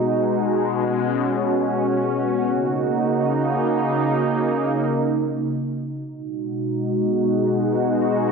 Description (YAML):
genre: hip hop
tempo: free time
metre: none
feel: none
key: unclear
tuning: A4 = 440 Hz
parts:
  - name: sweeping resonant pad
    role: solo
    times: 0.0-8.3 s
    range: Cb3 to Gb4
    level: -19 LUFS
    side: equal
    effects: chorus, analog delay
room: moderate spring reverb, RT60 1.7 s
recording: echo-heavy mix, nothing above 7.8 kHz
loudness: -19 LUFS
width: side -5 dB against mid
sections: 0.0-6.1 A section; 6.1-8.3 B section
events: none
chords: 0.0 Abm7; 2.5 Ebm7; 6.1 Abm7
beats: free time